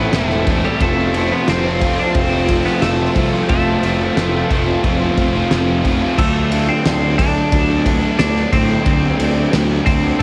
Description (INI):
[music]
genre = rock, shoegaze and dream pop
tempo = 89 BPM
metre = 4/4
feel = straight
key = unclear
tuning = A4 = 440 Hz
[part]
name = twelve-string electric guitar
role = melody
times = 0.0-10.2 s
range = G3 to D4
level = -24 LUFS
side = equal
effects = subtle chorus, cassette tape, tape echo
[part]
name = string machine, full ensemble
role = sustained chords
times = 0.0-6.2 s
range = F4 to C6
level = -27 LUFS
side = equal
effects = ensemble chorus, cassette tape
[part]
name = biting overdriven guitar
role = riff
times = 0.0-6.2 s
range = F2 to F4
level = -24 LUFS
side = equal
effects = reverse reverb, cassette tape
[part]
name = sludgy distorted guitar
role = riff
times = 0.0-10.2 s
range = A2 to F4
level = -24 LUFS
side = equal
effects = overdrive, cassette tape
[part]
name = thick fuzz guitar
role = riff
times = 0.0-10.2 s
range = F2 to D4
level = -27 LUFS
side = equal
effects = none
[part]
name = fuzz fingered electric bass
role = bass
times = 0.0-10.2 s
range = E1 to A2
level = -23 LUFS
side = equal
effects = overdrive
[part]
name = loose indie drum kit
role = drums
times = 0.1-10.2 s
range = crash cymbal, kick drum, ride cymbal, snare drum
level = -22 LUFS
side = equal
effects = cassette tape
[sound]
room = light reverb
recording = home recording on cassette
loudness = -16 LUFS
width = mono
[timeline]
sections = 0.0-6.2 A section; 6.2-10.2 A section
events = none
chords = 0.0 Amadd9; 0.8 Fmaj7; 6.2 D7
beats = 0.14 | 0.81 1.48 2.15 2.83 | 3.50 4.17 4.84 5.52 | 6.19 6.86 7.53 8.20 | 8.87 9.54 10.21